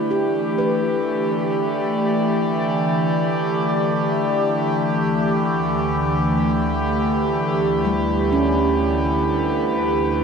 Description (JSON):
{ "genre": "ambient", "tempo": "free time", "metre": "none", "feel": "none", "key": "unclear", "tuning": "A4 = 443 Hz", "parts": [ { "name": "warbly tape-like pad", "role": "sustained chords", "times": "0.0-10.2 s", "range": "D2 to D5", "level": "-19 LUFS", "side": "equal", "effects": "chorus, built-in reverb, phaser" }, { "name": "handpan", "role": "arpeggios", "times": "0.0-3.1, 7.8-10.2 s", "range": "G3 to D5", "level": "-25 LUFS", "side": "right 2 dB", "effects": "tape echo" }, { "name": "glass harmonica", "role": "texture", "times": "0.0-10.2 s", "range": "B5", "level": "-30 LUFS", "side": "left 1 dB", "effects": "none" } ], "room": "wet echo chamber reverb, RT60 2.0 s, small room ambience", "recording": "echo-heavy mix, nothing above 10.8 kHz", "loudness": "-18 LUFS", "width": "side -6 dB against mid", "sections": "0.0-10.2 A section", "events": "fade-in on glass harmonica 0.0-10.2", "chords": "0.0 Dsus2" }